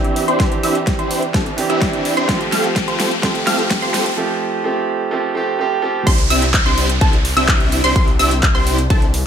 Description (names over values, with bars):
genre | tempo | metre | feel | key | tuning
EDM, festival progressive house | 127 BPM | 4/4 | straight | C major | A4 = 436 Hz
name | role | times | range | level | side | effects
bright concert grand piano | accompaniment | 0.0-6.1 s | E3 to G4 | -20 LUFS | right 4 dB | sidechain pumping, tape echo
wide unison pluck | arpeggios | 0.0-9.0 s | A5 to F6 | -22 LUFS | equal | vintage 12-bit sampler grit, sidechain pumping, tape echo
big supersaw lead | riff | 0.0-9.0 s | C4 to F5 | -20 LUFS | right 1 dB | sidechain pumping, low-pass filter, tape echo
big-room dance drum kit | drums | 0.0-9.2 s | crash cymbal, handclaps, hi-hat, snare drum | -22 LUFS | equal | overdrive, small room ambience
riser and downlifter | sound effects | 1.1-9.3 s | none | -25 LUFS | left 1 dB | none
electronic kick drum | drums | 0.4-9.0 s | none | -17 LUFS | left 1 dB | overdrive, small room ambience
wide detuned saw bass | bass | 6.1-9.2 s | C2 | -20 LUFS | left 1 dB | chorus, sidechain pumping
room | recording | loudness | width
moderate digital room reverb, RT60 1.0 s | high-pass filter | -14 LUFS | side -8 dB against mid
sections
0.0-6.1 A section; 6.1-9.3 B section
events
build-up 0.0-6.1; drum fill 0.0-4.2; filter sweep on supersaw synth 0.0-6.1; filter sweep on synth pluck 0.0-6.1; riser 1.1-4.2; break 4.2-6.1; drop 6.1-9.3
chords
0.0 Cadd9; 2.3 Fadd9; 6.1 Cadd9